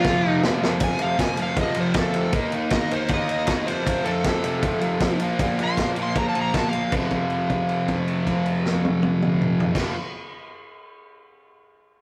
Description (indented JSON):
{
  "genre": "garage rock duo or trio",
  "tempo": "157 BPM",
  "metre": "4/4",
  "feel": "straight",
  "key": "F mixolydian",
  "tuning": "A4 = 441 Hz",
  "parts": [
    { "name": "overdriven slide guitar", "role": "melody", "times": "0.0-6.9 s", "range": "F4 to C6", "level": "-29 LUFS", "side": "equal", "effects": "none" },
    { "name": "fuzz guitar", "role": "riff", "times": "0.0-9.9 s", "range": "F2 to Eb4", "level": "-25 LUFS", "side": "equal", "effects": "distortion" },
    { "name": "vintage drum kit", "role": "drums", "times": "0.0-9.8 s", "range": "crash cymbal, kick drum, ride cymbal, snare drum, toms", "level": "-28 LUFS", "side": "equal", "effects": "none" }
  ],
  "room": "moderate stone room reverb, RT60 1.2 s",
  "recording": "rough rehearsal-room recording, tube saturation",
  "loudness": "-23 LUFS",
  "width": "mono",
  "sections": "0.8-6.9 A section; 6.9-10.0 B section",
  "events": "drum fill 0.0-0.8; electric slide guitar solo 0.8-6.9; held note 6.9-9.8",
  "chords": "0.1 F5; 2.3 Eb5; 3.7 F; 5.2 Bb5; 6.9 F5",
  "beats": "0.05 0.43 | 0.81 1.19 1.57 1.95 | 2.33 2.71 3.10 3.48 | 3.86 4.24 4.63 5.01 | 5.39 5.78 6.16 6.54 | 6.93 7.31 7.69 8.08 | 8.46 8.84 9.22 9.61"
}